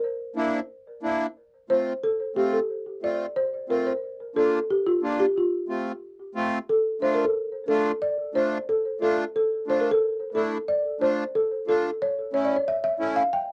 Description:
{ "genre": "latin", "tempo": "180 BPM", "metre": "4/4", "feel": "straight", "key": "unclear", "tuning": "A4 = 440 Hz", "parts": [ { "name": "folk marimba with soft mallets", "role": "melody", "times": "0.0-13.5 s", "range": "F4 to G5", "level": "-26 LUFS", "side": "equal", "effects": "analog delay" }, { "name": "accordion", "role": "accompaniment", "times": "0.4-13.2 s", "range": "A3 to F4", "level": "-29 LUFS", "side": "equal", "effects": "cassette tape" } ], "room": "wet booth ambience, RT60 0.2 s", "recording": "home recording on cassette", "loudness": "-26 LUFS", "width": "mono", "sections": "0.0-6.7 A section; 6.7-13.5 B section", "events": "none", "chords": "0.0 Bb; 1.4 F; 4.0 Bb; 5.4 F; 6.7 Dm; 12.0 A" }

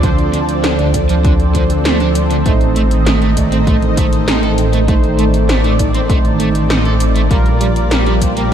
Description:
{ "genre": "synthwave", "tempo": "99 BPM", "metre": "4/4", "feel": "straight", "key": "unclear", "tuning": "A4 = 438 Hz", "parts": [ { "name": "lush unison pad", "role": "sustained chords", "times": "0.0-8.5 s", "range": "Eb3 to Eb5", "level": "-18 LUFS", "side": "equal", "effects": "chorus, phaser, sidechain pumping" }, { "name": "crunchy overdriven guitar", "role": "riff", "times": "0.0-8.4 s", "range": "D3 to A4", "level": "-22 LUFS", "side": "right 4 dB", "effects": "wide subtle chorus, digital delay" }, { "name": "analog synth brass", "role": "stabs", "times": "0.0-8.5 s", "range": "F3 to D5", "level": "-19 LUFS", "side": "right 3 dB", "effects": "chorus, digital delay" }, { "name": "dark detuned saw bass", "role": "bass", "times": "0.0-8.5 s", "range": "A1 to D2", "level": "-16 LUFS", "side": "equal", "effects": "tube saturation, sidechain pumping" }, { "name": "80s electronic pad drums", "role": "drums", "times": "0.0-8.5 s", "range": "hi-hat, snare drum", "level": "-21 LUFS", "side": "equal", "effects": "none" }, { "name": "electronic kick drum", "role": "drums", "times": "0.0-8.3 s", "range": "none", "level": "-15 LUFS", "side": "equal", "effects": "none" } ], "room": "light reverb", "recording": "dark, warm production", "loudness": "-11 LUFS", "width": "side -9 dB against mid", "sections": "0.0-8.5 A section", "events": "none", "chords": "0.0 Dm7; 2.5 Adim; 7.3 Gm7/Bb" }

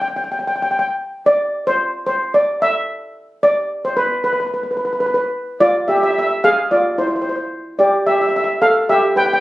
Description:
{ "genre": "calypso", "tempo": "110 BPM", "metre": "4/4", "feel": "swing 54% on 16ths", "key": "unclear", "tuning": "A4 = 440 Hz", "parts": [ { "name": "steel pan", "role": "solo", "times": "0.0-9.4 s", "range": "E4 to G5", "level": "-15 LUFS", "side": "equal", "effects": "slapback echo" } ], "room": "moderate studio reverb, RT60 0.6 s", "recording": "recorded on a phone in the room, studio ambience, compression", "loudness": "-15 LUFS", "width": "side -17 dB against mid", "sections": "0.0-5.6 A section; 5.6-9.4 B section", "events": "none", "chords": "0.0 N.C.; 5.6 Fm; 7.8 G7sus2" }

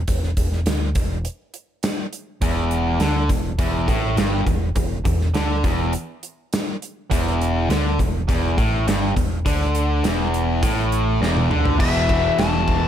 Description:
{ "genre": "hard rock", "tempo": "102 BPM", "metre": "4/4", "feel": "straight", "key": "E minor", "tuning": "A4 = 440 Hz", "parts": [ { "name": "overdriven fingered electric bass", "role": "bass", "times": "0.0-12.9 s", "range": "E1 to D2", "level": "-23 LUFS", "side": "equal", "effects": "none" }, { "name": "gated 80s drum kit", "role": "drums", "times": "0.1-12.8 s", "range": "crash cymbal, hi-hat, kick drum, snare drum, toms", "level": "-22 LUFS", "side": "equal", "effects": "none" }, { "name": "distorted electric guitar", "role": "riff", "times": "2.4-12.9 s", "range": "E2 to E3", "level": "-25 LUFS", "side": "left 9 dB", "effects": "overdrive" }, { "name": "distorted electric guitar", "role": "riff", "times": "2.4-12.9 s", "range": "E2 to E3", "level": "-25 LUFS", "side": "right 11 dB", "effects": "overdrive" }, { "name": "nasal lead guitar with a parked wah", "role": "melody", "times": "11.8-12.9 s", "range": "E5 to A5", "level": "-22 LUFS", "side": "left 6 dB", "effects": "overdrive, slapback echo" } ], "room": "light reverb, small room ambience", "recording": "none", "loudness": "-18 LUFS", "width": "side -10 dB against mid", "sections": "0.0-11.8 A section; 11.8-12.9 B section", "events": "drum fill 11.2-11.8", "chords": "0.0 Em; 11.8 E5" }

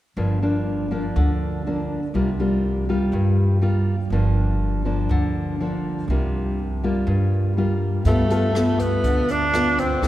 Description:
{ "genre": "bossa nova", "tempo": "122 BPM", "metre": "4/4", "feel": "straight", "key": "unclear", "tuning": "A4 = 440 Hz", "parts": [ { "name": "nylon-string guitar", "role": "accompaniment", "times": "0.2-10.1 s", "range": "G2 to A4", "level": "-22 LUFS", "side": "equal", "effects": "none" }, { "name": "upright bass", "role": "bass", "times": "0.2-10.1 s", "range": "G1 to G2", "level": "-23 LUFS", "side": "equal", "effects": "none" }, { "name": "jazz brush drum kit", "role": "drums", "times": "8.0-10.1 s", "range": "hi-hat, kick drum, rim click", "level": "-27 LUFS", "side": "equal", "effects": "none" }, { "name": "breathy tenor saxophone", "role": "melody", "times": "8.1-10.1 s", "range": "A3 to D4", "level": "-21 LUFS", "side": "right 1 dB", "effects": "none" } ], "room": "wet cathedral reverb, RT60 6.4 s", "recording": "recorded in a church or concert hall", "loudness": "-19 LUFS", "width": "side -14 dB against mid", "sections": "0.2-8.1 A section; 8.1-10.1 B section", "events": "none", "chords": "0.2 Gm7; 2.1 C7sus4; 4.1 Gm7; 6.1 C7sus4; 8.1 G9" }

